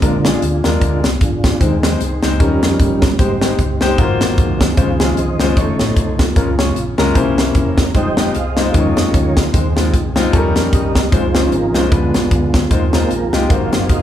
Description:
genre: uptempo gospel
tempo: 151 BPM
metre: 4/4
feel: swing 57% on 8ths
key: Ab major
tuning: A4 = 440 Hz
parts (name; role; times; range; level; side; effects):
- warm baby grand piano; accompaniment; 0.0-14.0 s; Ab2 to Db5; -19 LUFS; left 3 dB; none
- mellow tonewheel organ; sustained chords; 0.0-14.0 s; Db3 to G5; -20 LUFS; right 2 dB; fast rotary speaker, chorus vibrato
- fingered electric bass; bass; 0.0-14.0 s; E1 to F2; -21 LUFS; equal; none
- crisp fusion drum kit; drums; 0.0-14.0 s; hi-hat, kick drum, snare drum; -15 LUFS; equal; none
room: moderate large studio reverb, RT60 1.3 s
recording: band playing live in one room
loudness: -12 LUFS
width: side -11 dB against mid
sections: 0.0-14.0 A section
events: tonewheel organ solo 0.0-14.0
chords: 0.0 Bb7; 1.6 Ab/Eb; 2.4 Eb7; 3.2 Abmaj7; 4.0 Ab13; 4.8 Dbmaj7; 5.6 F7b13; 6.4 Bbm7/Db; 7.2 C7b9; 7.9 Fm7; 8.7 Eb9sus4; 9.5 Ab/Eb; 10.3 Eb7; 11.1 Dbmaj7; 11.9 Ddim7; 12.7 Ab6/Eb; 13.5 Ab13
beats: | 0.03 0.42 0.82 1.21 | 1.61 2.00 2.40 2.79 | 3.19 3.58 3.98 4.38 | 4.77 5.17 5.57 5.96 | 6.36 6.76 7.15 7.55 | 7.95 8.34 8.74 9.14 | 9.54 9.93 10.33 10.72 | 11.12 11.52 11.91 12.31 | 12.71 13.10 13.50 13.89

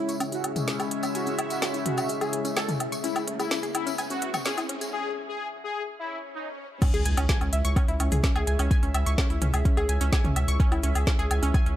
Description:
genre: melodic techno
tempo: 127 BPM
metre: 4/4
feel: straight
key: C# minor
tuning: A4 = 441 Hz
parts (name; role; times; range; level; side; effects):
- analog synth brass; melody; 0.0-6.5 s; D#4 to A4; -33 LUFS; left 2 dB; chorus, sidechain pumping, dub echo
- sweeping resonant pad; sustained chords; 0.0-11.8 s; G#3 to E5; -35 LUFS; left 1 dB; chorus, sidechain pumping
- overtone-sweeping drone; drone; 0.0-4.9 s; C#3; -43 LUFS; right 1 dB; chorus, built-in reverb, phaser, sidechain pumping
- riser, swell and impact; sound effects; 1.6-8.7 s; none; -40 LUFS; right 1 dB; none
- deep dark ambient pad; texture; 0.3-4.9 s; C#4 to E5; -36 LUFS; left 2 dB; chorus, built-in reverb, sidechain pumping
- analog pluck; arpeggios; 0.1-11.7 s; C#4 to C#6; -32 LUFS; equal; chorus, vintage 12-bit sampler grit, sidechain pumping, dub echo
- deep house drum kit; drums; 0.1-11.8 s; crash cymbal, hi-hat, snare drum, toms, woodblock; -30 LUFS; left 1 dB; none
- tambourine; percussion; 0.1-4.9 s; none; -40 LUFS; left 3 dB; none
- electronic kick drum; drums; 6.8-11.6 s; none; -23 LUFS; equal; none
- round analog bass; bass; 6.9-11.8 s; C#2; -25 LUFS; equal; sidechain pumping
room: light reverb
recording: high-pass filter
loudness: -24 LUFS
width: side -12 dB against mid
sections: 0.0-6.8 A section; 6.8-11.8 B section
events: build-up 0.0-6.8; filter sweep on synth arpeggio sound 0.0-6.8; riser 1.6-4.9; break 4.9-6.8; swell 6.0-6.8; drop 6.8-11.8; impact 6.8-8.7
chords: 0.0 C#m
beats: 0.20 0.68 | 1.15 1.62 2.09 2.57 | 3.04 3.51 3.98 4.46 | 4.93 5.40 5.87 6.35 | 6.82 7.29 7.76 8.24 | 8.71 9.18 9.65 10.13 | 10.60 11.07 11.54

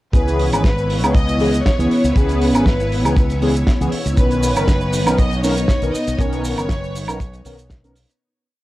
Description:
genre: nu-disco, nu disco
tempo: 119 BPM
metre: 4/4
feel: straight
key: C# dorian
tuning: A4 = 440 Hz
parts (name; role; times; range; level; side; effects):
- clear studio violin section; melody; 0.1-7.7 s; B4 to D#5; -25 LUFS; equal; tape echo
- mellow synth brass; accompaniment; 0.1-7.9 s; D#3 to B4; -22 LUFS; equal; chorus, cassette tape, sidechain pumping
- string machine, full ensemble; sustained chords; 0.5-8.2 s; B3 to C#5; -23 LUFS; equal; ensemble chorus, sidechain pumping
- fingered electric bass with an envelope filter; bass; 0.1-8.0 s; F#1 to C#2; -21 LUFS; equal; none
- damped 70s drum kit; drums; 0.1-8.2 s; hi-hat, shaker, snare drum, woodblock; -25 LUFS; right 1 dB; small room ambience, cassette tape
- kick drum; drums; 0.1-7.8 s; none; -17 LUFS; equal; small room ambience, cassette tape
- maracas; percussion; 4.2-8.2 s; none; -32 LUFS; right 1 dB; none
room: moderate studio reverb, RT60 0.7 s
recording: home recording on cassette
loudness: -15 LUFS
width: side -17 dB against mid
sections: 0.1-8.2 drop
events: drop 0.1-8.2; fade-out 5.5-8.2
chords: 0.1 C#m7; 4.2 Bmaj9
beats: | 0.14 0.65 1.15 1.66 | 2.16 2.66 3.17 3.67 | 4.18 4.68 5.18 5.69 | 6.19 6.70 7.20 7.71

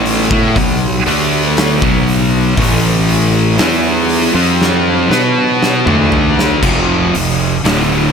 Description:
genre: stoner and doom metal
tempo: 59 BPM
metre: 4/4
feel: straight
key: unclear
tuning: A4 = 443 Hz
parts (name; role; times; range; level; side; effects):
- bowed-like drone; sustained chords; 0.0-8.1 s; A3 to F#5; -28 LUFS; left 2 dB; none
- distorted electric guitar; riff; 0.0-8.1 s; D2 to B4; -18 LUFS; left 2 dB; overdrive
- thick fuzz guitar; riff; 0.0-8.1 s; D2 to B4; -17 LUFS; left 10 dB; distortion
- thick fuzz guitar; riff; 0.0-8.1 s; D2 to B4; -16 LUFS; right 10 dB; distortion
- fuzz fingered electric bass; bass; 0.0-8.1 s; D1 to B2; -18 LUFS; equal; overdrive
- oversized low-tuned drum kit; drums; 0.1-7.9 s; crash cymbal, hi-hat, kick drum, snare drum, toms; -17 LUFS; equal; none
room: small room ambience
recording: none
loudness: -10 LUFS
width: side -6 dB against mid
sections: 0.0-8.1 A section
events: drum fill 4.6-6.6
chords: 0.0 B5; 2.6 A5; 3.6 B5; 6.6 F5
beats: 0.56 1.57 | 2.58 3.60 4.61 5.63 | 6.64 7.66

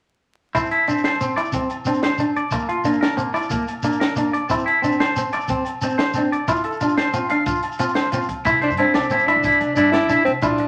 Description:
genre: highlife guitar band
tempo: 122 BPM (dotted quarters)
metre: 12/8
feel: straight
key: C mixolydian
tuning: A4 = 440 Hz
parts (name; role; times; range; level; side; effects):
- clean electric guitar; accompaniment; 0.5-10.7 s; C4 to E4; -26 LUFS; equal; none
- compact cocktail drum kit; drums; 0.5-10.7 s; crash cymbal, hi-hat, kick drum, snare drum; -28 LUFS; equal; none
- twangy electric guitar; arpeggios; 0.6-10.6 s; Bb3 to F5; -24 LUFS; equal; none
- agogo bells; percussion; 0.6-10.6 s; none; -31 LUFS; equal; none
- shekere; percussion; 0.6-10.5 s; none; -34 LUFS; equal; none
- upright bass; bass; 8.5-10.7 s; Bb1 to C3; -32 LUFS; equal; none
- breathy alto saxophone; melody; 8.6-10.7 s; C4 to E4; -22 LUFS; equal; none
room: wet studio reverb, RT60 0.9 s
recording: vinyl crackle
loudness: -20 LUFS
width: mono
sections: 0.6-8.5 A section; 8.5-10.7 B section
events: none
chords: 0.6 Cadd9; 2.5 Bb; 4.5 Cadd9; 6.5 F5; 8.5 Cadd9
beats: | 0.55 1.05 1.54 2.04 | 2.53 3.02 3.52 4.01 | 4.50 5.00 5.49 5.99 | 6.48 6.97 7.46 7.96 | 8.45 8.95 9.44 9.93 | 10.43

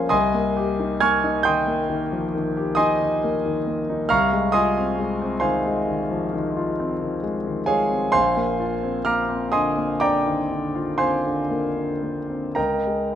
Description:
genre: classical, impressionist solo piano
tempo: 36-46 BPM (dotted quarters)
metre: 9/8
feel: rubato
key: unclear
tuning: A4 = 440 Hz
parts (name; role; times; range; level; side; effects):
- warm concert grand piano; solo; 0.0-13.2 s; Bb1 to Ab6; -20 LUFS; equal; none
room: light reverb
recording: close, detailed microphones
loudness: -20 LUFS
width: side -10 dB against mid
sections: 0.0-13.2 A section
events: none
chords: 0.1 Cm7; 4.1 Fm7/C; 8.1 Bbadd9; 12.6 Db5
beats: | 0.11 1.45 2.77 | 4.09 5.42 6.78 | 8.13 9.52 10.97 | 12.56

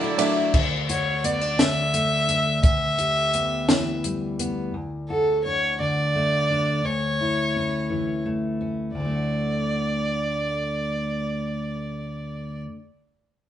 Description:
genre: indie folk with a building arrangement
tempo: 57 BPM (dotted quarters)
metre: 6/8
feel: straight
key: D major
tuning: A4 = 440 Hz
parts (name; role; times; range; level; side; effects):
- dark fiddle; melody; 0.0-12.6 s; A4 to E5; -24 LUFS; equal; none
- dark grand piano; accompaniment; 0.0-0.6 s; D2 to E5; -25 LUFS; right 2 dB; none
- picked twelve-string acoustic guitar; accompaniment; 0.0-0.6 s; F#3 to E4; -25 LUFS; left 4 dB; none
- clear symphonic string section; sustained chords; 0.0-0.5 s; D5 to E6; -39 LUFS; left 2 dB; none
- bluegrass banjo; arpeggios; 0.0-0.5 s; D4 to D5; -28 LUFS; right 6 dB; none
- compact cocktail drum kit; drums; 0.2-4.6 s; crash cymbal, hi-hat, kick drum, ride cymbal, snare drum; -22 LUFS; equal; none
- fingerpicked steel-string acoustic guitar; accompaniment; 0.5-12.9 s; D2 to G4; -26 LUFS; left 1 dB; none
room: moderate studio reverb, RT60 0.8 s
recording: band playing live in one room, nothing above 10.6 kHz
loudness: -21 LUFS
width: side -10 dB against mid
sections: 0.5-9.0 A section; 9.0-13.2 B section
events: none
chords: 0.0 Dadd9; 0.5 D; 2.6 Em/D; 4.7 D; 6.8 A/D; 9.0 D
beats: | 0.54 1.59 | 2.64 3.69 | 4.74 5.79 | 6.85 7.90 | 8.96 10.01 | 11.07 12.12

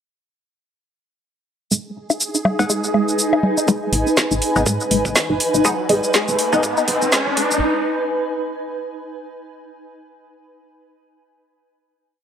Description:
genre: minimal techno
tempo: 122 BPM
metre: 4/4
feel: swing 57% on 16ths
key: G# minor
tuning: A4 = 443 Hz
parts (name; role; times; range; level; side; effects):
- resonant blip pluck; riff; 1.7-7.4 s; G#3 to D#4; -22 LUFS; left 1 dB; phaser, analog chorus, sidechain pumping, digital delay
- filtered dub chord stab; stabs; 1.7-6.6 s; G#3 to D#4; -25 LUFS; left 1 dB; phaser, analog chorus, cassette tape, dub echo
- garage drum kit; drums; 1.7-7.6 s; hi-hat, shaker, snare drum; -20 LUFS; right 1 dB; overdrive, high-pass filter on perc, high-pass filter on hats, high-pass filter on snare
- granular cloud pad; texture; 2.5-7.6 s; D#4 to G#5; -22 LUFS; right 1 dB; built-in reverb, sidechain pumping
- swarming drone; texture; 2.1-3.7 s; G#4; -28 LUFS; equal; built-in reverb, sidechain pumping
- woodblock, congas and cowbell; percussion; 2.1-3.5 s; none; -20 LUFS; left 1 dB; dub echo
- electronic kick drum; drums; 3.7-7.2 s; none; -25 LUFS; equal; overdrive, high-pass filter on kick
- riser; sound effects; 4.9-7.6 s; none; -25 LUFS; left 1 dB; none
- woody FM bass; bass; 3.9-7.6 s; F#1 to G#2; -24 LUFS; equal; sidechain pumping
room: moderate plate reverb, RT60 2.5 s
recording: high-pass filter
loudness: -16 LUFS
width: side -8 dB against mid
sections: 1.7-3.7 intro; 3.7-7.6 build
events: filter sweep on synth arpeggio sound 1.7-3.7, 3.7-7.6; build-up 3.7-7.6; riser 4.9-7.6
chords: 1.7 G#m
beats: | 1.71 2.21 2.70 3.19 | 3.68 4.17 4.67 5.16 | 5.65 6.14 6.63 7.12

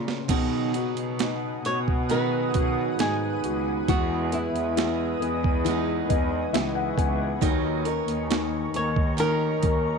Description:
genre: pop ballad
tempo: 68 BPM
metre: 4/4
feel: straight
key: unclear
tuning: A4 = 440 Hz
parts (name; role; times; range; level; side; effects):
- flamenco guitar; melody; 0.0-10.0 s; E4 to C#5; -29 LUFS; right 1 dB; slapback echo
- felt-muted upright piano; accompaniment; 0.0-10.0 s; B2 to G#5; -29 LUFS; left 13 dB; none
- picked steel-string acoustic guitar; arpeggios; 0.0-10.0 s; B2 to A#4; -30 LUFS; right 12 dB; none
- warm chamber cello section; bass; 0.0-10.0 s; C#2 to B2; -30 LUFS; right 1 dB; none
- boom bap sampler-style drum kit; drums; 0.1-9.8 s; crash cymbal, hi-hat, kick drum, snare drum; -26 LUFS; right 3 dB; overdrive
- shimmering ambient pad; sustained chords; 1.0-10.0 s; A#4 to D#6; -33 LUFS; left 2 dB; chorus, built-in reverb
room: light reverb, studio ambience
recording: 1960s-style stereo with parts hard left and right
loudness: -23 LUFS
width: side -5 dB against mid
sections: 0.3-10.0 A section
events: drum fill 0.0; felt piano fill 5.7-7.4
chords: 0.3 B6; 3.9 Emaj7; 7.4 D#m7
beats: | 0.29 1.20 2.10 3.00 | 3.89 4.78 5.66 6.54 | 7.42 8.30 9.19

